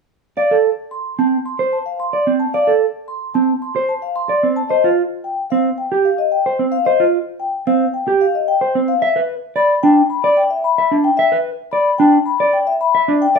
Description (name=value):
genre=classical, minimalist pattern music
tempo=111 BPM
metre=4/4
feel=straight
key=F lydian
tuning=A4 = 440 Hz
part: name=vibraphone with soft mallets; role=melody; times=0.4-13.4 s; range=Eb5 to C6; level=-18 LUFS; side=left 5 dB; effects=none
part: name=mellow electric guitar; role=arpeggios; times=0.4-13.4 s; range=C4 to E5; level=-16 LUFS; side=right 2 dB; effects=none
room=moderate large studio reverb, RT60 0.9 s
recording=minimal, uncompressed stereo recording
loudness=-14 LUFS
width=side -5 dB against mid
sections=0.4-13.4 A section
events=none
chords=0.4 F (rootless); 4.7 C5; 9.0 Em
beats=| 0.38 0.92 1.46 2.00 | 2.54 3.08 3.62 4.16 | 4.70 5.24 5.78 6.32 | 6.86 7.40 7.94 8.48 | 9.02 9.56 10.10 10.64 | 11.19 11.73 12.27 12.81 | 13.35